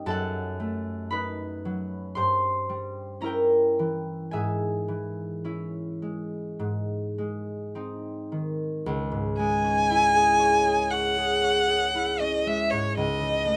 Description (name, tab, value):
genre	classical, romantic duo for violin and harp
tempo	52-62 BPM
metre	4/4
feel	rubato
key	C# minor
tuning	A4 = 440 Hz
part	concert harp	accompaniment	0.0-13.6 s	C#2 to B#5	-29 LUFS	equal	none
part	rich violin	melody	9.4-13.6 s	C#5 to G#5	-24 LUFS	equal	none
room	moderate studio reverb, RT60 0.5 s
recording	dark, warm production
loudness	-26 LUFS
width	mono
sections	0.0-8.9 A section; 8.9-13.6 B section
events	none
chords	0.1 D#dim/F#; 2.2 Gdim7; 4.3 C#m/G#; 6.6 G#; 8.9 C#m; 13.0 F#m/C# (rootless)